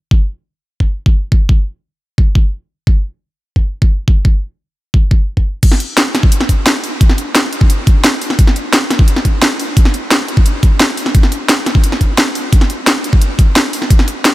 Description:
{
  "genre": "drum and bass",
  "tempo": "174 BPM",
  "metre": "4/4",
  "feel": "straight",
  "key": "none",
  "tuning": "none",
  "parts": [
    { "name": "electronic kick drum", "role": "drums", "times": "0.1-14.0 s", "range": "none", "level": "-10 LUFS", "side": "equal", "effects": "overdrive" },
    { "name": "drum and bass drum kit", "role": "drums", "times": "5.6-14.3 s", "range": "crash cymbal, hi-hat, snare drum", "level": "-13 LUFS", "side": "equal", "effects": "overdrive, low-pass filter on hats, low-pass filter on cymbals, low-pass filter on snare, low-pass filter on room" }
  ],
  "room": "light reverb",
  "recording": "none",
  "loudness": "-10 LUFS",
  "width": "side -17 dB against mid",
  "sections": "0.0-5.6 A section; 5.6-14.3 B section",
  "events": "drop 5.6-14.3",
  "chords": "none"
}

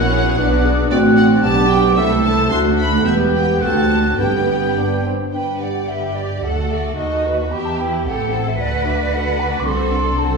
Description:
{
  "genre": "quick classical-period movement for symphony orchestra",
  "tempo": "111 BPM",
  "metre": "2/4",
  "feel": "rubato",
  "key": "G major",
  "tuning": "A4 = 440 Hz",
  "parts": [
    { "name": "clear studio violin section", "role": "melody", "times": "0.0-10.4 s", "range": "A4 to C6", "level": "-26 LUFS", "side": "left 2 dB", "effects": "none" },
    { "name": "mellow hollow silver concert flute", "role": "second line", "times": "0.0-10.4 s", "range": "B4 to G6", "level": "-22 LUFS", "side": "equal", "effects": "none" },
    { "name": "rich studio violin section", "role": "second line", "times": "0.0-10.4 s", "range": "E4 to D5", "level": "-27 LUFS", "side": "left 1 dB", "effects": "none" },
    { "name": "warm clarinet", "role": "second line", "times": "0.0-5.0 s", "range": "F#4 to C#5", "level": "-22 LUFS", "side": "right 1 dB", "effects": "none" },
    { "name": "rich studio viola section", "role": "accompaniment", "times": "0.0-10.4 s", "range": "G3 to A4", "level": "-24 LUFS", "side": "right 1 dB", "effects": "none" },
    { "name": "warm bassoon", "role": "accompaniment", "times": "0.0-5.2 s", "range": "A3 to E4", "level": "-25 LUFS", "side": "right 1 dB", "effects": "none" },
    { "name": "warm French horn section", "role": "sustained chords", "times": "0.0-5.0 s", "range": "A3 to G4", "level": "-22 LUFS", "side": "left 2 dB", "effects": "none" },
    { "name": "rich studio cello section", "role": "bass", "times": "0.0-10.4 s", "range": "D2 to B4", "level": "-22 LUFS", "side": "right 3 dB", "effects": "none" },
    { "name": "warm studio double bass section", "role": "bass", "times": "0.0-10.4 s", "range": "E1 to E2", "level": "-21 LUFS", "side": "right 2 dB", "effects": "none" }
  ],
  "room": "wet recital hall reverb, RT60 1.4 s",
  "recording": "small room ambience",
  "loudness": "-15 LUFS",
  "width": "side -4 dB against mid",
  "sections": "0.0-5.3 A section; 5.3-10.4 B section",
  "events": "none",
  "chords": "0.4 Bm; 0.9 D7/A; 1.4 G/B; 2.0 Am/C; 2.5 D7; 3.0 Em; 3.6 D7; 4.2 G; 6.4 D; 7.0 B7/D#; 7.5 Em; 8.1 Am7; 8.6 D; 9.6 D7/C"
}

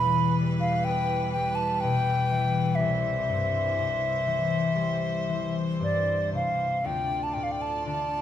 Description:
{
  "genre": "celtic folk, Celtic slow air",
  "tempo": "57-64 BPM",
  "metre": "4/4",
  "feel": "rubato",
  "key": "unclear",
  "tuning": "A4 = 440 Hz",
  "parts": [
    { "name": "bright baroque flute", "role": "melody", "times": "0.0-8.2 s", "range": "D5 to B5", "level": "-27 LUFS", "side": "equal", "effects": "none" },
    { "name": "concert harp", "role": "accompaniment", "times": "0.0-8.2 s", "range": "C2 to B3", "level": "-28 LUFS", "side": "left 2 dB", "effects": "none" },
    { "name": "clear chamber string section", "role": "sustained chords", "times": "0.0-8.2 s", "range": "E3 to D5", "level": "-34 LUFS", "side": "right 2 dB", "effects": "none" }
  ],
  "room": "wet recital hall reverb, RT60 1.5 s",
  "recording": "minimal, uncompressed stereo recording",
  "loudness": "-24 LUFS",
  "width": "side -10 dB against mid",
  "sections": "0.0-6.8 A section; 6.8-8.2 B section",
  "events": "none",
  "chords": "0.0 Em; 2.8 C; 6.8 Dm"
}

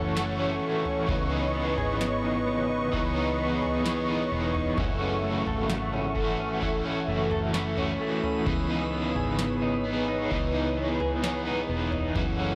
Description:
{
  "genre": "dream pop",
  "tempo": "65 BPM",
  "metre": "4/4",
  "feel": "straight",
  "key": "C# minor",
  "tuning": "A4 = 440 Hz",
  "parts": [
    { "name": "crunchy overdriven guitar", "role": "accompaniment", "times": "0.0-12.6 s", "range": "F#2 to G#4", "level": "-33 LUFS", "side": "equal", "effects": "tremolo, subtle chorus" },
    { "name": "warm analog pad", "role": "sustained chords", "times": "0.0-12.6 s", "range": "A4 to C#6", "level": "-34 LUFS", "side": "equal", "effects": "chorus" },
    { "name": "direct-recorded clean electric guitar", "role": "arpeggios", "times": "0.0-12.6 s", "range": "E3 to A4", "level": "-34 LUFS", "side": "equal", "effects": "lush chorus, tape echo" },
    { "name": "vintage muted fingered electric bass", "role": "bass", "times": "0.0-12.6 s", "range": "E1 to C#2", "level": "-36 LUFS", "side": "equal", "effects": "transformer saturation" },
    { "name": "booming analog drum machine", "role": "drums", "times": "0.2-12.4 s", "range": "kick drum, snare drum, toms", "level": "-36 LUFS", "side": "equal", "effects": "none" },
    { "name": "drifting glass-harmonics texture", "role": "texture", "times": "7.9-9.4 s", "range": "B5 to E6", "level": "-44 LUFS", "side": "equal", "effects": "chorus, built-in reverb, tape echo" }
  ],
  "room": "light reverb",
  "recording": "dry, gritty hardware recording",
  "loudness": "-28 LUFS",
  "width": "mono",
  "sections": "0.0-12.6 A section",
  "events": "none",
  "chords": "0.0 F#m7; 1.1 C#m9; 4.8 F#m7; 8.5 C#m9"
}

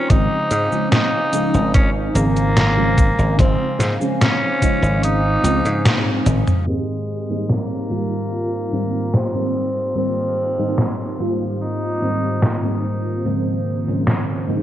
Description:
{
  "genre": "vaporwave",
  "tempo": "73 BPM",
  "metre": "4/4",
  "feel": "straight",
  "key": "Ab major",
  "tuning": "A4 = 440 Hz",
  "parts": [
    { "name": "raspy tenor saxophone", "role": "melody", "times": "0.0-12.8 s", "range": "Ab3 to Eb4", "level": "-23 LUFS", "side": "equal", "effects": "tape echo" },
    { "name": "mellow FM electric piano", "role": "accompaniment", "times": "0.0-14.6 s", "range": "Ab2 to C5", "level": "-22 LUFS", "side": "equal", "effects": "ensemble chorus" },
    { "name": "warbly tape-like pad", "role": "sustained chords", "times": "0.0-14.6 s", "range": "Ab2 to Ab5", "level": "-30 LUFS", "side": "equal", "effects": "chorus, built-in reverb" },
    { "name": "dry thumbed slap bass", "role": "bass", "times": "0.1-6.4 s", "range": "Ab1 to Ab2", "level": "-19 LUFS", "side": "equal", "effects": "tube saturation" },
    { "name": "detuned 8-bit digital drum machine", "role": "drums", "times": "0.1-14.2 s", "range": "cabasa, hi-hat, snare drum, toms", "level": "-19 LUFS", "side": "equal", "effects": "small room ambience, gated reverb" },
    { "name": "electronic kick drum", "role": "drums", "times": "0.1-4.8 s", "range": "none", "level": "-16 LUFS", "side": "equal", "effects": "small room ambience" }
  ],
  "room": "light reverb",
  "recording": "cassette tape, low-pass filter",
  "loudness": "-16 LUFS",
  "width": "side -12 dB against mid",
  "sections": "0.0-6.7 A section; 6.7-14.6 B section",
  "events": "kick drops out 5.0-6.7; band accent 5.9-6.3; drum fill 6.3-6.7; filter sweep 6.7-14.6",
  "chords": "0.1 Eb13sus4/Ab; 6.7 Abmaj7; 13.2 Eb13sus4/Ab"
}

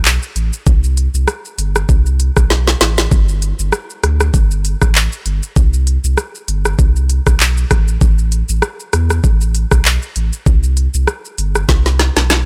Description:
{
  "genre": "dancehall",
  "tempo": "98 BPM",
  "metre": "4/4",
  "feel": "swing 56% on 16ths",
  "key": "unclear",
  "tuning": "A4 = 440 Hz",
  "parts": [
    { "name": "saturated sub bass", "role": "bass", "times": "0.0-12.5 s", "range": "G1 to E2", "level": "-17 LUFS", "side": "equal", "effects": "none" },
    { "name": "island pop drum kit", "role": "drums", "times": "0.1-12.5 s", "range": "handclaps, hi-hat, kick drum, rim click, shaker, snare drum", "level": "-16 LUFS", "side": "equal", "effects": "none" }
  ],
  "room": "little or no reverb",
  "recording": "none",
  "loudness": "-15 LUFS",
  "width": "mono",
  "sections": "0.0-12.5 A section",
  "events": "drum fill 2.5-3.1, 11.7-12.5",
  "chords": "none"
}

